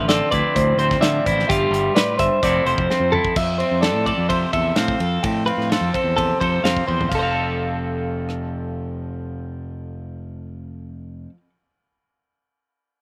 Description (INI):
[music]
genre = math rock and midwest emo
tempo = 128 BPM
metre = 4/4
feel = straight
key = F major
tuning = A4 = 441 Hz
[part]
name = electric guitar through a small old amp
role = melody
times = 0.0-11.2 s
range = B4 to G5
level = -27 LUFS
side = equal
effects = slapback echo
[part]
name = electric guitar at the edge of break-up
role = accompaniment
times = 0.0-11.5 s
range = F2 to A4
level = -27 LUFS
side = equal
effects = slapback echo
[part]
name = twelve-string electric guitar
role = arpeggios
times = 0.0-11.4 s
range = G4 to F5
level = -26 LUFS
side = equal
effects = none
[part]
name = growling fingered electric bass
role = bass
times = 0.0-11.3 s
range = F1 to D3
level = -27 LUFS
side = equal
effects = overdrive
[part]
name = loose indie drum kit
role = drums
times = 0.1-8.4 s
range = crash cymbal, hi-hat, kick drum, ride cymbal, rim click, snare drum, toms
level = -27 LUFS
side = equal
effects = none
[sound]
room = little or no reverb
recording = recorded outdoors, with no room sound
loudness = -20 LUFS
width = mono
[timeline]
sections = 0.0-3.4 A section; 3.4-7.1 B section; 7.1-10.9 C section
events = drum fill 2.9-3.4, 6.9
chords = 0.0 Dm9; 1.5 G9; 2.4 Fmaj7; 7.1 F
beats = 0.09 0.55 1.02 | 1.49 1.95 2.42 2.89 | 3.35 3.82 4.29 4.76 | 5.23 5.70 6.16 6.63 | 7.10 7.57 8.04 8.51 | 8.98 9.45 9.92 10.39